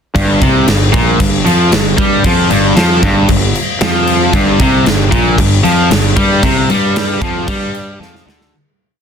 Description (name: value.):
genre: hard rock.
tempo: 115 BPM.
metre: 4/4.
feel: straight.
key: unclear.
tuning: A4 = 440 Hz.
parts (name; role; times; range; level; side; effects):
high-gain distorted guitar; riff; 0.1-8.5 s; G2 to G3; -12 LUFS; equal; distortion.
fuzz fingered electric bass; bass; 0.2-8.5 s; G1 to G2; -17 LUFS; equal; overdrive.
big rock drum kit; drums; 0.2-8.5 s; crash cymbal, kick drum, snare drum; -14 LUFS; equal; none.
room: little or no reverb.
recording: dense, heavily limited modern master.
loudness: -9 LUFS.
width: side -7 dB against mid.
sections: 0.2-8.5 riff.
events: fade-out 6.4-8.5; drum fill 8.0-8.5.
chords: 0.2 G5.